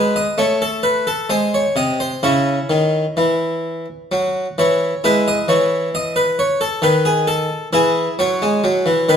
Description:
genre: classical, baroque-style suite movement for harpsichord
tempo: 63-68 BPM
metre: 3/4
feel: rubato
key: C# minor, E major from 5.0 s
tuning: A4 = 441 Hz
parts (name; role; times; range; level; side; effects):
- harpsichord; solo; 0.0-9.2 s; B#2 to D#5; -15 LUFS; equal; none
room: wet stone room reverb, RT60 1.1 s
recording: heard from further back in the room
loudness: -15 LUFS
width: side -8 dB against mid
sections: 0.0-5.0 A section; 5.0-9.2 A section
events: none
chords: 0.0 F#m69 (rootless); 1.3 G#; 2.2 C#m; 5.0 E; 6.8 N.C.; 7.7 E

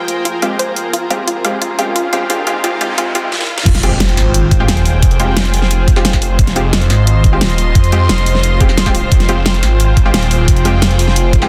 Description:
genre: dark technical drum and bass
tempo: 176 BPM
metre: 4/4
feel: straight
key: F minor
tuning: A4 = 441 Hz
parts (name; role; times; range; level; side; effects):
- sweeping resonant pad; sustained chords; 0.0-11.5 s; F4 to G5; -25 LUFS; equal; chorus, sidechain pumping
- unison pluck; arpeggios; 0.0-3.2 s; F4 to F5; -23 LUFS; equal; sidechain pumping, delay
- riser, noise sweep and impact; sound effects; 0.1-5.0 s; none; -25 LUFS; equal; none
- warm chamber string section; texture; 0.0-11.5 s; F4 to C6; -25 LUFS; equal; sidechain pumping
- dubstep drum kit; drums; 0.1-11.5 s; crash cymbal, hi-hat, snare drum; -20 LUFS; equal; high-pass filter on hats, high-pass filter on snare, high-pass filter on cymbals
- orchestra-hit-like synth stab; stabs; 0.4-11.5 s; Ab3 to G4; -22 LUFS; equal; built-in reverb, delay
- phased detuned saw bass; bass; 3.7-11.5 s; Eb1 to F2; -16 LUFS; equal; phaser, overdrive, sidechain pumping
- electronic kick drum; drums; 3.7-11.4 s; none; -14 LUFS; equal; none
room: light reverb, digital ambience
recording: dense, heavily limited modern master, high-pass filter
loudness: -13 LUFS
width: mono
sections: 0.0-3.7 A section; 3.7-11.5 B section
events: build-up 0.0-3.7; filter sweep on synth arpeggio sound 0.0-3.7; riser 0.1-3.7; noise sweep 2.3-3.7; drum fill 3.3-3.7; drop 3.7-11.5; impact 3.7-5.0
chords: 0.0 Fmadd9

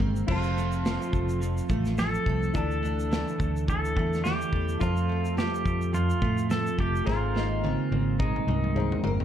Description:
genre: acoustic pop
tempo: 106 BPM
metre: 4/4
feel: swing 55% on 16ths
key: F major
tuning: A4 = 442 Hz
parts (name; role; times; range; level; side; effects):
- dark upright piano; accompaniment; 0.0-9.2 s; Eb4 to Bb5; -39 LUFS; left 8 dB; none
- picked steel-string acoustic guitar; accompaniment; 0.0-9.2 s; F2 to Bb4; -32 LUFS; equal; double-tracked left and right
- clean electric guitar; arpeggios; 0.0-9.2 s; Eb3 to D4; -34 LUFS; right 7 dB; wide subtle chorus
- vintage muted fingered electric bass; bass; 0.0-9.2 s; F1 to A2; -29 LUFS; equal; none
- modern studio drum kit; drums; 0.0-9.2 s; crash cymbal, kick drum, shaker, snare drum, toms; -30 LUFS; equal; none
- pedal steel guitar; second line; 0.3-9.0 s; Eb4 to A4; -32 LUFS; equal; none
room: studio ambience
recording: dark, warm production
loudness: -24 LUFS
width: side -10 dB against mid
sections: 0.3-9.2 A section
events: drum fill 7.1-9.2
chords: 0.3 F; 2.5 Dsus2; 4.8 F; 7.1 Abadd9

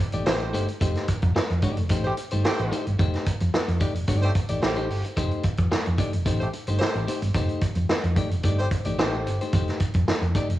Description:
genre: funk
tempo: 110 BPM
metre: 4/4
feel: straight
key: unclear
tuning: A4 = 440 Hz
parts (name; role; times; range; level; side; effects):
- clean electric guitar; accompaniment; 0.0-10.5 s; A3 to D5; -31 LUFS; left 4 dB; cassette tape
- hollow-body short-scale fingered electric bass; bass; 0.1-10.6 s; F1 to F2; -25 LUFS; equal; none
- vintage drum kit; drums; 0.1-10.6 s; hi-hat, kick drum, snare drum; -25 LUFS; right 1 dB; cassette tape
- warm horn section; second line; 0.3-9.4 s; A3 to C5; -30 LUFS; right 1 dB; cassette tape
room: light reverb, small room ambience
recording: home recording on cassette, studio ambience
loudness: -22 LUFS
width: side -14 dB against mid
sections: 0.0-10.6 A section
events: none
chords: 0.0 F9

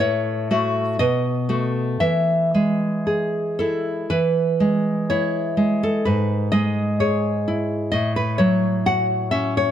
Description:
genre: romantic piece for solo classical guitar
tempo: 56-65 BPM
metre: 2/4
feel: rubato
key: E major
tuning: A4 = 441 Hz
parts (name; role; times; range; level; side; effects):
- nylon-string guitar; solo; 0.0-9.7 s; G#2 to F#5; -18 LUFS; equal; none
room: light reverb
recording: close, detailed microphones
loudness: -18 LUFS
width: side -10 dB against mid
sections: 0.0-4.1 A section; 4.1-9.7 A section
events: none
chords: 0.0 F#m/A; 1.0 B7; 2.0 E; 6.0 E/G#; 7.9 F#m/A

